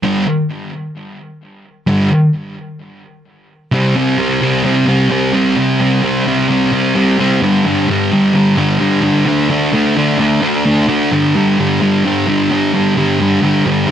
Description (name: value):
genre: rock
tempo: 130 BPM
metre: 4/4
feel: straight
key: unclear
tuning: A4 = 441 Hz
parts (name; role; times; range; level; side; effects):
- thick fuzz guitar; solo; 0.0-13.9 s; G2 to D4; -12 LUFS; equal; distortion, tape echo
room: moderate club reverb, RT60 0.7 s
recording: none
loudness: -11 LUFS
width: side -9 dB against mid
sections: 0.0-3.7 A section; 3.7-11.1 B section; 11.1-13.9 C section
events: none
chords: 0.0 G5; 3.7 C5; 7.4 G5; 9.3 D5; 11.1 G5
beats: | 0.05 0.51 0.97 1.43 | 1.89 2.35 2.81 3.27 | 3.73 4.19 4.66 5.12 | 5.58 6.04 6.50 6.96 | 7.42 7.88 8.34 8.80 | 9.26 9.72 10.19 10.65 | 11.11 11.57 12.03 12.50 | 12.96 13.42 13.88